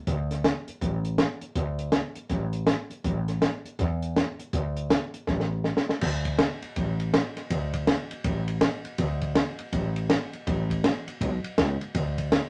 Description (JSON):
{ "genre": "rockabilly", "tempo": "162 BPM", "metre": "4/4", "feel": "swing 63% on 8ths", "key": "unclear", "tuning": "A4 = 440 Hz", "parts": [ { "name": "upright bass", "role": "bass", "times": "0.1-12.4 s", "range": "A1 to E2", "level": "-31 LUFS", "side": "equal", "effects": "none" }, { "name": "compact cocktail drum kit", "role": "drums", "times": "0.1-12.4 s", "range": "crash cymbal, hi-hat, kick drum, ride cymbal, snare drum", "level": "-29 LUFS", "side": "equal", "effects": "none" } ], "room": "light reverb", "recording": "none", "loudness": "-27 LUFS", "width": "mono", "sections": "0.0-6.0 A section; 6.0-12.5 B section", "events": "drum fill 5.3-6.0", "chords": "none" }